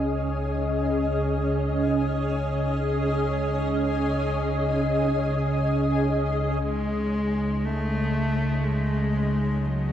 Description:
dark ambient drone; free time; A4 = 441 Hz
granular cloud pad; sustained chords; 0.0-9.9 s; C#4 to D#5; -26 LUFS; equal; built-in reverb, wide subtle chorus, shimmer reverb
deep rumbling drone; drone; 0.0-9.9 s; C#2 to C#3; -26 LUFS; equal; built-in reverb
quartz singing bowl; texture; 0.0-9.9 s; D#4 to G#4; -44 LUFS; equal
dark cello; melody; 6.6-9.9 s; F#3 to A3; -26 LUFS; left 2 dB; diffuse ambient delay
wet huge ambient reverb, RT60 7.5 s; dreamy mix soaked in reverb; -22 LUFS; side -10 dB against mid
0.0-6.6 A section; 6.6-9.9 B section
fade-in on ambient pad 6.6-9.9
0.0 C#sus2

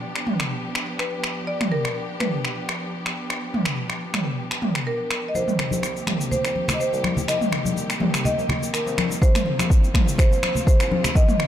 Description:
afro house; 124 BPM; 4/4; swing 54% on 16ths; C minor; A4 = 440 Hz
marimba with medium hard mallets; melody; 0.0-11.5 s; Bb4 to Eb5; -26 LUFS; equal; tape echo
clear symphonic string section; sustained chords; 0.0-11.5 s; Eb3 to G4; -32 LUFS; equal; sidechain pumping
deep house drum kit; drums; 0.2-11.5 s; finger snaps, shaker, toms; -25 LUFS; right 1 dB
smooth synth bass; bass; 5.3-11.2 s; C2; -34 LUFS; equal; sidechain pumping, high-pass filter
congas; percussion; 5.3-11.5 s; -27 LUFS; left 2 dB
electronic kick drum; drums; 9.2-11.3 s; -17 LUFS; equal
moderate lush hall reverb, RT60 1.9 s; dark, warm production; -20 LUFS; side -11 dB against mid
0.0-5.3 A section; 5.3-11.5 B section
build-up 5.3-11.5
0.0 G7; 5.3 Cm7

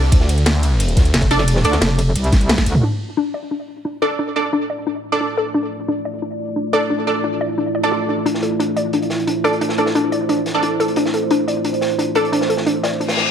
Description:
dark technical drum and bass; 177 BPM; 4/4; straight; D minor; A4 = 440 Hz
orchestra-hit-like synth stab; stabs; 0.0-1.7, 4.0-12.2 s; D4 to D5; -21 LUFS; right 3 dB; built-in reverb, tape echo
snarling distorted saw bass; bass; 0.0-1.1 s; C2 to D2; -16 LUFS; equal; distortion
crunchy breakbeat drum kit; drums; 0.0-2.8, 8.3-13.3 s; hi-hat, snare drum; -27 LUFS; equal; high-pass filter on hats, high-pass filter on snare, high-pass filter on room
drum and bass drum kit; drums; 0.1-2.8 s; hi-hat, ride cymbal, snare drum, toms; -20 LUFS; equal
electronic kick drum; drums; 0.1-2.6 s; -15 LUFS; equal
metallic wobble bass; bass; 1.1-2.8 s; F1 to D2; -17 LUFS; equal; chorus
deep dark ambient pad; sustained chords; 5.1-13.3 s; A3 to D5; -22 LUFS; right 2 dB; chorus, built-in reverb, sidechain pumping
warbly dusty pluck; arpeggios; 2.8-13.1 s; D4 to D5; -21 LUFS; left 3 dB; chorus, sidechain pumping, tape echo
reverse cymbal; sound effects; 13.1-13.3 s; -17 LUFS; left 6 dB
light reverb; -16 LUFS; side -8 dB against mid
0.0-2.8 A section; 2.8-13.3 B section
drop 0.0-2.8; drum fill 2.5-2.8; band accent 2.5; filter sweep on synth arpeggio sound 2.8-13.3; reverse cymbal 13.1
0.0 Dm; 2.8 Dmadd9

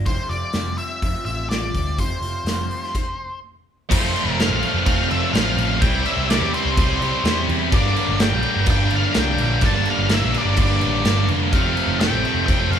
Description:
quiet-loud alternative rock; 126 BPM; 4/4; straight; A4 = 440 Hz
electric guitar through a small old amp; arpeggios; 0.0-2.9 s; F2 to F4; -33 LUFS; left 1 dB; phaser
overdriven picked electric bass; bass; 0.0-12.8 s; F1 to F2; -23 LUFS; right 1 dB
octave-fuzz lead guitar; melody; 0.1-12.8 s; C5 to A5; -26 LUFS; left 2 dB; distortion
big rock drum kit; drums; 0.1-12.8 s; crash cymbal, hi-hat, kick drum, snare drum; -22 LUFS; equal
high-gain distorted guitar; riff; 3.9-12.8 s; F2 to E4; -26 LUFS; equal; distortion
scooped high-gain guitar; riff; 3.9-12.8 s; F2 to F4; -25 LUFS; left 8 dB; distortion
tight distorted guitar; riff; 3.9-12.8 s; F2 to F4; -26 LUFS; right 8 dB; distortion
light reverb; band playing live in one room; -17 LUFS; side -8 dB against mid
0.0-3.9 A section; 3.9-12.8 B section
stop 2.9-3.9
0.1 F; 5.8 C; 7.7 Gm; 11.5 Fadd9

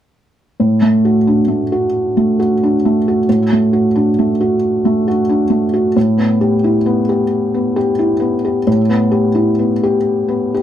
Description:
neoclassical minimalist piano; 44 BPM (dotted quarters); 6/8; rubato; A4 = 440 Hz
felt-muted upright piano; solo; 0.6-10.6 s; A2 to G4; -12 LUFS; equal
moderate small room ambience, RT60 0.5 s; -12 LUFS; side -10 dB against mid
0.6-10.6 A section
0.6 D/A; 6.0 G6/A

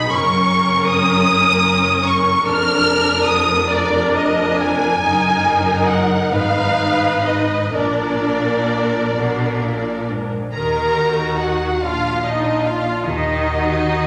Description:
classical, slow romantic movement for string orchestra; 42-53 BPM (dotted quarters); 6/8; rubato; Eb minor; A4 = 440 Hz
warm studio violin section; melody; 0.0-14.1 s; D5 to F6; -23 LUFS; equal
rich studio violin section; second line; 0.0-14.1 s; D4 to F6; -24 LUFS; equal
rich studio viola section; accompaniment; 0.0-14.1 s; Db4 to Cb5; -22 LUFS; equal
dark studio double bass section; bass; 0.0-14.1 s; F1 to Eb2; -28 LUFS; equal
rich studio cello section; bass; 0.0-14.1 s; F2 to Eb3; -26 LUFS; equal
wet recital hall reverb, RT60 1.4 s; -17 LUFS; mono
0.0-10.6 A section; 10.6-14.1 B section
0.1 Gb; 2.5 Bb/F; 5.0 Ebm/Gb; 6.3 Fm7b5/Ab; 7.8 Bb; 10.6 Ebm; 11.8 Bb; 13.1 Ebm

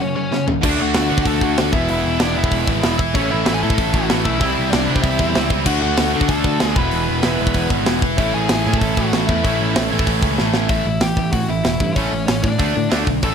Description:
punk rock; 191 BPM; 4/4; straight; A4 = 440 Hz
bluesy overdriven lead guitar; melody; 0.0-13.3 s; C#4 to B5; -24 LUFS; left 3 dB; distortion, digital delay
distorted electric guitar; riff; 0.0-13.3 s; F#2 to F#4; -23 LUFS; right 14 dB; overdrive
tight distorted guitar; riff; 0.0-13.3 s; E2 to D4; -25 LUFS; left 16 dB; distortion
tight metal drum kit; drums; 0.3-13.3 s; crash cymbal, hi-hat, kick drum, snare drum, toms; -20 LUFS; equal
distorted electric guitar; riff; 0.6-10.7 s; E2 to D4; -24 LUFS; equal; distortion
modern bright picked electric bass; bass; 0.6-13.3 s; E1 to D3; -23 LUFS; equal
little or no reverb; -15 LUFS; side -7 dB against mid
0.6-10.7 A section; 10.7-13.3 B section
break 0.0-0.6; drum fill 0.3-0.6, 10.4-10.7
0.0 F#5; 0.6 D; 1.7 E; 3.1 A; 4.4 C; 5.7 D; 6.8 E; 8.2 A; 12.6 D5

